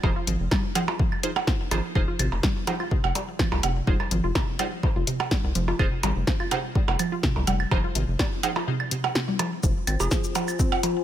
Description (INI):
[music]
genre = minimal techno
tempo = 125 BPM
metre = 4/4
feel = straight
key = F minor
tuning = A4 = 440 Hz
[part]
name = resonant blip pluck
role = riff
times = 0.0-10.9 s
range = C3 to F4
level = -30 LUFS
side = equal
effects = phaser, sidechain pumping, tape echo
[part]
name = wavetable chord stab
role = stabs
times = 0.0-8.5 s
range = Eb4 to C5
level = -34 LUFS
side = right 2 dB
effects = ping-pong delay
[part]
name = rubbery square bass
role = bass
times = 0.0-10.1 s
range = F1 to C2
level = -27 LUFS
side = equal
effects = sidechain pumping
[part]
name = electronic kick drum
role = drums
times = 0.0-10.7 s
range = none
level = -26 LUFS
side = equal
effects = none
[part]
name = percussion blips and claves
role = percussion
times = 0.0-10.9 s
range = none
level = -30 LUFS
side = right 6 dB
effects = overdrive
[part]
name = punchy analog drum machine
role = drums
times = 0.3-10.9 s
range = cabasa, hi-hat, snare drum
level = -30 LUFS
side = left 1 dB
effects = none
[part]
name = warbly tape-like pad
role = texture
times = 9.9-11.0 s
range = F4 to Ab5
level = -30 LUFS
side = left 7 dB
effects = chorus, built-in reverb, sidechain pumping
[part]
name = hollow square pluck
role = melody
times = 10.0-10.2 s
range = Ab4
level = -35 LUFS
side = right 5 dB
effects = chorus, ping-pong delay
[sound]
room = light reverb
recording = none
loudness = -22 LUFS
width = side -11 dB against mid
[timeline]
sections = 0.0-9.6 A section; 9.6-11.0 B section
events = drop 9.6-11.0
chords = 0.0 Fm